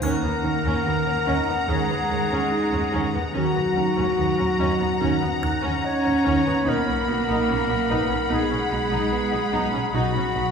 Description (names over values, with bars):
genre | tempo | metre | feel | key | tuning
cinematic, suspense film score | 72 BPM | 4/4 | straight | Eb minor | A4 = 440 Hz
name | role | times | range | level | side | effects
warm symphonic violin section | melody | 0.0-10.5 s | Bb5 to B5 | -30 LUFS | left 2 dB | none
warm clarinet | second line | 0.0-10.5 s | F#4 to Db5 | -26 LUFS | left 1 dB | none
warm symphonic violin section | second line | 0.0-10.5 s | Gb5 | -30 LUFS | left 5 dB | none
warm symphonic viola section | accompaniment | 0.0-10.4 s | Cb4 to D#4 | -30 LUFS | equal | none
fat analog bass | riff | 0.0-10.5 s | B2 to Eb4 | -28 LUFS | right 4 dB | none
clear symphonic cello section | bass | 0.0-10.5 s | Gb3 to Db4 | -28 LUFS | right 2 dB | none
warm symphonic double bass section | bass | 0.0-10.4 s | B1 to Eb2 | -29 LUFS | right 1 dB | none
triangle | percussion | 0.0-1.6 s | none | -42 LUFS | left 3 dB | none
music box | texture | 0.0-7.9 s | Gb6 | -39 LUFS | right 3 dB | none
room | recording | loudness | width
wet scoring stage reverb, RT60 1.8 s | heard from further back in the room | -20 LUFS | side -6 dB against mid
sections
0.0-10.5 A section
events
none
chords
0.0 Ebm7; 6.7 B